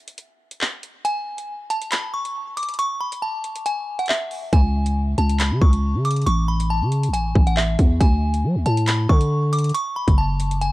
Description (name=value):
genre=hip hop, drill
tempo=138 BPM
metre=4/4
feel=half-time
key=C# phrygian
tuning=A4 = 440 Hz
part: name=drill drum kit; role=drums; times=0.1-10.7 s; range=handclaps, hi-hat, kick drum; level=-20 LUFS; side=equal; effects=vintage 12-bit sampler grit
part: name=delicate synth tine bell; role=melody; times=1.0-10.7 s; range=E5 to D6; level=-25 LUFS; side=equal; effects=chorus, tape echo
part: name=growling 808-style bass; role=bass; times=4.5-10.7 s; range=F#1 to F#3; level=-19 LUFS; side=equal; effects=none
room=little or no reverb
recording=dark, warm production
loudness=-18 LUFS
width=side -18 dB against mid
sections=0.0-10.7 A section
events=break 0.0-4.5; kick muted 2.8-4.5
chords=0.0 N.C.; 4.5 C#5; 6.3 A; 8.0 D5; 9.7 F#m